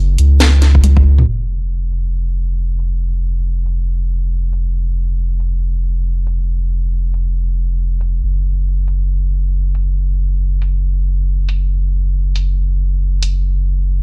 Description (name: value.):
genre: deep dubstep.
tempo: 138 BPM.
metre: 4/4.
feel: swing 60% on 16ths, half-time.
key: unclear.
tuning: A4 = 440 Hz.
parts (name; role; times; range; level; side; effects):
soft dub sub bass; bass; 0.0-14.0 s; F1 to Db2; -14 LUFS; equal; transformer saturation.
garage drum kit; drums; 0.2-13.3 s; hi-hat, snare drum, toms; -17 LUFS; equal; studio ambience.
electronic kick drum; drums; 0.7-1.0 s; none; -14 LUFS; equal; studio ambience.
room: little or no reverb.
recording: dry, gritty hardware recording, transformer saturation, low-pass filter.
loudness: -13 LUFS.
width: side -34 dB against mid.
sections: 0.0-1.3 A section; 1.3-14.0 B section.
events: drum fill 0.8-1.3; filter sweep 1.3-14.0.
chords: none.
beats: 0.40 0.83 | 1.27 1.71 2.14 2.57 | 3.01 3.44 3.88 4.31 | 4.75 5.18 5.62 6.05 | 6.49 6.92 7.36 7.79 | 8.23 8.66 9.10 9.53 | 9.97 10.40 10.84 11.27 | 11.71 12.14 12.57 13.01 | 13.44 13.88.